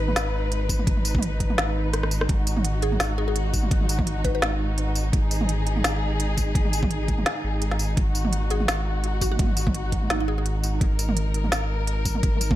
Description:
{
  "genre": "half-time drum and bass",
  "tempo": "169 BPM",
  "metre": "4/4",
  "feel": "swing 55% on 16ths, half-time",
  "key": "G# minor",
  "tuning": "A4 = 440 Hz",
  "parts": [
    { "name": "dark studio string section", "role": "sustained chords", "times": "0.0-12.6 s", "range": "G#2 to B4", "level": "-30 LUFS", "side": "left 1 dB", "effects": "sidechain pumping" },
    { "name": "saturated sub bass", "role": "bass", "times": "0.0-12.6 s", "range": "G#1", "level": "-25 LUFS", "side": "equal", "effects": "none" },
    { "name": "organic electronic drum kit", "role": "drums", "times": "0.1-12.6 s", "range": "hi-hat, rim click, snare drum, tambourine, toms", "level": "-27 LUFS", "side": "right 1 dB", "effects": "overdrive, studio reverb" },
    { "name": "electronic kick drum", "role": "drums", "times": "0.7-12.6 s", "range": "none", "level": "-24 LUFS", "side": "equal", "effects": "overdrive, studio reverb" },
    { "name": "mallet-like synth pluck", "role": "melody", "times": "2.8-4.4, 8.5-10.4 s", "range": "D#4 to B4", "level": "-33 LUFS", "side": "equal", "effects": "chorus, phaser, dub echo" }
  ],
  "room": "digital ambience",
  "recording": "none",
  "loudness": "-21 LUFS",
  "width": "side -14 dB against mid",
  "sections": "0.0-12.6 A section",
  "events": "drum fill 1.9-2.3",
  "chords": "0.0 G#5",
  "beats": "0.16 0.52 | 0.87 1.23 1.58 1.94 | 2.29 2.65 3.00 3.36 | 3.71 4.07 4.42 4.78 | 5.13 5.49 5.84 6.20 | 6.55 6.91 7.26 7.62 | 7.97 8.33 8.68 9.04 | 9.39 9.75 10.10 10.46 | 10.81 11.17 11.52 11.88 | 12.23"
}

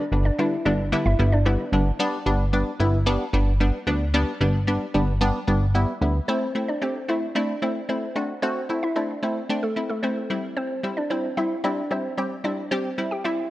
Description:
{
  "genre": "dance-pop",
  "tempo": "112 BPM",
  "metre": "4/4",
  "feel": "straight",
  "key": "unclear",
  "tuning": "A4 = 440 Hz",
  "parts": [
    { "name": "mallet-like synth pluck", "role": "melody", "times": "0.0-1.8, 6.3-13.4 s", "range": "A3 to G5", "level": "-27 LUFS", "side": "equal", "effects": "chorus, tape echo" },
    { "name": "punchy chord stab", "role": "accompaniment", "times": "0.0-13.4 s", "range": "D3 to G4", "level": "-25 LUFS", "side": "left 1 dB", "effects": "chorus" },
    { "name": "chorused synth bass", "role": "bass", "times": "0.1-6.2 s", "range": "G1 to D2", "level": "-21 LUFS", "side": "equal", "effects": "none" }
  ],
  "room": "light reverb",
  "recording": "worn, warbling old tape, cassette tape, warbly pitch drift",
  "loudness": "-21 LUFS",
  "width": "side -16 dB against mid",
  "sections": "0.0-2.0 A section; 2.0-6.3 B section; 6.3-13.5 C section",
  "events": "none",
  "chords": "0.0 G; 6.3 Am; 10.3 C",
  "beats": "0.39 0.92 1.46 | 2.00 2.53 3.07 3.60 | 4.14 4.67 5.21 5.75 | 6.28 6.82 7.35 7.89 | 8.42 8.96 9.49 10.03 | 10.57 11.10 11.64 12.17 | 12.71 13.24"
}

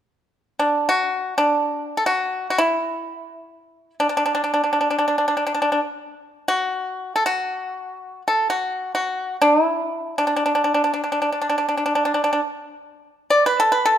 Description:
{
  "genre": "chinese traditional, Chinese solo plucked strings",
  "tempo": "free time",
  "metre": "none",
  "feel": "none",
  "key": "D gong mode",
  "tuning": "A4 = 439 Hz",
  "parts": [
    { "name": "pipa", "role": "solo", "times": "0.6-14.0 s", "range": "D4 to D5", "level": "-19 LUFS", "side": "equal", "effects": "none" }
  ],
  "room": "light reverb",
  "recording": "minimal, uncompressed stereo recording",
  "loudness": "-19 LUFS",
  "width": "side -10 dB against mid",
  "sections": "0.1-14.0 A section",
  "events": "none",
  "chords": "none",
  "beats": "free time"
}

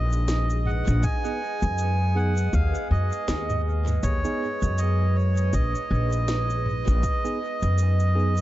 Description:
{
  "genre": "ambient dub",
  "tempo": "80 BPM",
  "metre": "4/4",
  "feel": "swing 58% on 16ths",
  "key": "unclear",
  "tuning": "A4 = 440 Hz",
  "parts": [
    { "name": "melodica", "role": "melody", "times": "0.0-8.4 s", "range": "Db5 to Ab5", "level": "-30 LUFS", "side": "right 1 dB", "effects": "vintage 12-bit sampler grit, dub echo" },
    { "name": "deep dark ambient pad", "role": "sustained chords", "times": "0.0-8.4 s", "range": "Eb4 to Eb5", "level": "-33 LUFS", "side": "right 3 dB", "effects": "chorus, built-in reverb" },
    { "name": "upright bass", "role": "bass", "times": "0.0-8.4 s", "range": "Bb1 to Gb2", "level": "-22 LUFS", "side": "equal", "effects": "tube saturation" },
    { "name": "organic electronic drum kit", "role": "drums", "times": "0.1-8.4 s", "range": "cabasa, snare drum, toms", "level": "-34 LUFS", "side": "equal", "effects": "dub echo" },
    { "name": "electronic kick drum", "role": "drums", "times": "1.0-7.2 s", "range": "none", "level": "-28 LUFS", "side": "equal", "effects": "overdrive" },
    { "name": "tine electric piano", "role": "stabs", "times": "1.2-8.3 s", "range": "Cb4 to Ab4", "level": "-35 LUFS", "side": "right 3 dB", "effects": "medium stereo tremolo, dub echo" }
  ],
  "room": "light reverb",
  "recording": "echo-heavy mix, nothing above 7.8 kHz",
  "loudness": "-22 LUFS",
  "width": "side -15 dB against mid",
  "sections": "0.0-8.4 A section",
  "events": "none",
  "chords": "0.0 Abm",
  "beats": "0.28 | 1.03 1.78 2.53 3.28 | 4.03 4.78 5.53 6.28 | 7.03 7.78"
}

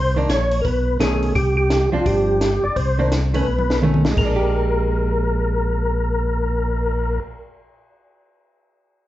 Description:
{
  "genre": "soul jazz organ trio",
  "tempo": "170 BPM",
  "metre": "4/4",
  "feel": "swing 63% on 8ths",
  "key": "Bb mixolydian",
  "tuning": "A4 = 441 Hz",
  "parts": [
    { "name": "percussive tonewheel organ", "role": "melody", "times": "0.0-7.2 s", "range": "F4 to D5", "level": "-22 LUFS", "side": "left 1 dB", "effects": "slow rotary speaker, chorus vibrato" },
    { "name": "tonewheel organ", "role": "bass", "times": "0.0-7.2 s", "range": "G1 to C2", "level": "-21 LUFS", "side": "equal", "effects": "overdrive, chorus vibrato, slow rotary speaker" },
    { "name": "archtop guitar, miked and amplified", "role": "accompaniment", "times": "0.2-7.4 s", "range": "Eb3 to G4", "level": "-24 LUFS", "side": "right 2 dB", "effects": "none" },
    { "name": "compact cocktail drum kit", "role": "drums", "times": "0.3-6.9 s", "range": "crash cymbal, cymbal swell, hi-hat, kick drum, snare drum, toms", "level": "-23 LUFS", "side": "equal", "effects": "none" }
  ],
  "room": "wet large studio reverb, RT60 0.9 s",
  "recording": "heard from further back in the room, nothing above 7.8 kHz",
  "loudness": "-17 LUFS",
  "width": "side -14 dB against mid",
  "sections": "0.0-4.2 A section; 4.2-7.0 B section",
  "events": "drum fill 3.5-4.2",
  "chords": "0.0 Cm9; 0.6 B9; 1.4 Csus2; 2.1 G7sus4; 2.8 Cm9; 3.5 B9; 4.2 Bb6",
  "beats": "0.29 0.65 1.00 | 1.35 1.70 2.06 2.41 | 2.76 3.11 3.46 3.82 | 4.17 4.52 4.88 5.23 | 5.58 5.93 6.29 6.64"
}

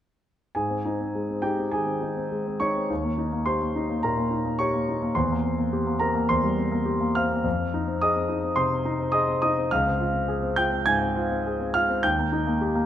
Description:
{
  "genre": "classical, virtuoso piano study",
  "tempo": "105 BPM",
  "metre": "4/4",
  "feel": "rubato",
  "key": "Ab major",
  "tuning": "A4 = 440 Hz",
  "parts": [
    { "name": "warm grand piano", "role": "solo", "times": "0.5-12.9 s", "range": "Db2 to Ab6", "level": "-22 LUFS", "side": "equal", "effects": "none" }
  ],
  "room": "moderate recital hall reverb, RT60 1.4 s",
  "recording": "close, detailed microphones",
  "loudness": "-23 LUFS",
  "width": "side -10 dB against mid",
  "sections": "0.6-12.9 A section",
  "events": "none",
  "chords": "0.6 Ab; 2.9 Eb7; 5.2 C7/E; 7.5 Fm7; 9.7 Dbmaj7; 12.0 Eb",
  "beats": "| 0.56 1.15 1.72 2.31 | 2.90 3.47 4.04 4.59 | 5.16 5.72 6.29 6.87 | 7.45 8.01 8.57 9.14 | 9.71 10.28 10.86 11.44 | 12.03 12.60"
}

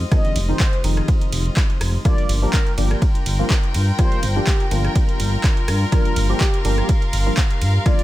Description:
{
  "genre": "deep house",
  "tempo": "124 BPM",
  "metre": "4/4",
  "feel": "swing 55% on 16ths",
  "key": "unclear",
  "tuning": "A4 = 439 Hz",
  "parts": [
    { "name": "dark analog pad", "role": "sustained chords", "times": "0.0-8.0 s", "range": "G3 to C5", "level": "-34 LUFS", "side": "left 2 dB", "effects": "none" },
    { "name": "smooth gliding synth bass", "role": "bass", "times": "0.0-7.8 s", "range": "F1 to G2", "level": "-19 LUFS", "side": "equal", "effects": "tube saturation, sidechain pumping" },
    { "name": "rich chamber string section", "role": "texture", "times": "0.0-8.0 s", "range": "F4 to G5", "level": "-29 LUFS", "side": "left 1 dB", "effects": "sidechain pumping" },
    { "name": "mellow horn-like synth lead", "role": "melody", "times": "0.1-8.0 s", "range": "G4 to Eb5", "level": "-29 LUFS", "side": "equal", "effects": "chorus, ping-pong delay" },
    { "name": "percussive organ stab", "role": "stabs", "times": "0.1-8.0 s", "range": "Eb3 to G4", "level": "-27 LUFS", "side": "left 1 dB", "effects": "ensemble chorus, sidechain pumping, ping-pong delay" },
    { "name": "electronic kick drum", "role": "drums", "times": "0.1-8.0 s", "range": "none", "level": "-18 LUFS", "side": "equal", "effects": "overdrive" },
    { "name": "punchy analog drum machine", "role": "drums", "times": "0.1-8.0 s", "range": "handclaps, hi-hat, ride cymbal, rim click", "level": "-27 LUFS", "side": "right 1 dB", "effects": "overdrive" }
  ],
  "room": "digital ambience",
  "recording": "none",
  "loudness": "-16 LUFS",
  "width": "side -15 dB against mid",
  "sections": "0.0-8.0 A section",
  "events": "none",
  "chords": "0.0 Fm7; 2.1 Gm7",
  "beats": "| 0.12 0.60 1.08 1.57 | 2.05 2.54 3.02 3.50 | 3.99 4.47 4.95 5.44 | 5.92 6.41 6.89 7.37 | 7.86"
}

